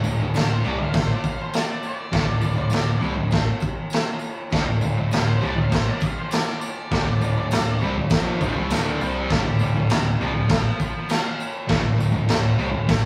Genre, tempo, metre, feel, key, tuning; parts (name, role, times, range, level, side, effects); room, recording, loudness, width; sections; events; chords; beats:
garage rock duo or trio; 100 BPM; 4/4; straight; D minor; A4 = 441 Hz
fuzz guitar; riff; 0.0-13.0 s; D2 to C4; -24 LUFS; equal; distortion
hollow-body short-scale picked electric bass; bass; 0.0-13.0 s; D1 to C2; -33 LUFS; equal; overdrive
tambourine; percussion; 0.0-13.0 s; -46 LUFS; equal
octave-fuzz lead guitar; melody; 0.4-11.4 s; C5 to A5; -35 LUFS; equal; distortion
vintage drum kit; drums; 0.4-13.0 s; crash cymbal, kick drum, snare drum; -26 LUFS; equal
moderate studio reverb, RT60 0.6 s; rough rehearsal-room recording, studio ambience; -22 LUFS; mono
0.0-13.1 A section
0.0 Dm
0.34 0.94 1.54 | 2.13 2.73 3.33 3.93 | 4.52 5.12 5.72 6.32 | 6.91 7.51 8.11 8.71 | 9.30 9.90 10.50 11.09 | 11.69 12.29 12.88